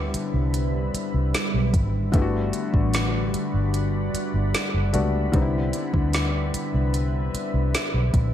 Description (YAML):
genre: contemporary R&B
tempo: 75 BPM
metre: 4/4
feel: straight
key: unclear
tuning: A4 = 440 Hz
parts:
  - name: felt-muted upright piano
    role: accompaniment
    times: 0.0-8.3 s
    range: D3 to F#4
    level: -28 LUFS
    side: left 4 dB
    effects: none
  - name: deep dark ambient pad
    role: sustained chords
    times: 0.0-8.3 s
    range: G3 to B5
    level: -30 LUFS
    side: right 1 dB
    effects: chorus, built-in reverb
  - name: vintage muted fingered electric bass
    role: bass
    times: 0.0-8.3 s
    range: F#1 to D2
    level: -23 LUFS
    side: equal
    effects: none
  - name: smooth R&B drum kit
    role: drums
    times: 0.1-8.3 s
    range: hi-hat, kick drum, snare drum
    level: -25 LUFS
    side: equal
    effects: none
room: little or no reverb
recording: none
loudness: -21 LUFS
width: side -11 dB against mid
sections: 0.0-8.3 A section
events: none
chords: 0.0 Cmaj7; 2.1 Gmaj7; 5.3 Cmaj7